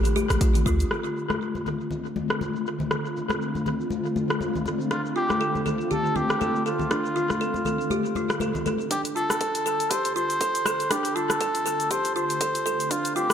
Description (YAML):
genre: afro house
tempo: 120 BPM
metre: 4/4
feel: swing 57% on 16ths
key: D minor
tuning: A4 = 441 Hz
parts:
  - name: warm analog pad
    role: sustained chords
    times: 0.0-13.3 s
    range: D3 to G4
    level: -32 LUFS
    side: right 1 dB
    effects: chorus, sidechain pumping
  - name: deep house drum kit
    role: drums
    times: 0.1-13.3 s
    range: hi-hat, rim click, shaker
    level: -30 LUFS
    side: equal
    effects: low-pass filter on hats, studio reverb, low-pass filter on perc, low-pass filter on snare, tape echo
  - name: kalimba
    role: arpeggios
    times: 0.2-0.7, 4.9-13.3 s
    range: D4 to A4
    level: -30 LUFS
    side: right 3 dB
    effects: sidechain pumping, tape echo
  - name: congas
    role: percussion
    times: 0.2-8.8 s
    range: none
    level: -30 LUFS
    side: left 5 dB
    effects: tape echo
  - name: warm 808-style bass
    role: bass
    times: 0.3-0.8 s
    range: A1 to D2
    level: -23 LUFS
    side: equal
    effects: sidechain pumping
  - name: electronic kick drum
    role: drums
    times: 0.4-0.8, 8.9-13.0 s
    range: none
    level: -26 LUFS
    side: equal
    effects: high-pass filter on kick, studio reverb
  - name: trumpet with cup mute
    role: melody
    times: 4.9-13.3 s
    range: F4 to C5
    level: -26 LUFS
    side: left 1 dB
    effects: tape echo
room: wet spring reverb, RT60 2.2 s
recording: echo-heavy mix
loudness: -23 LUFS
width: side -8 dB against mid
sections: 0.9-8.9 A section; 8.9-13.3 B section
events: build-up 8.9-13.3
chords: 0.0 Dm7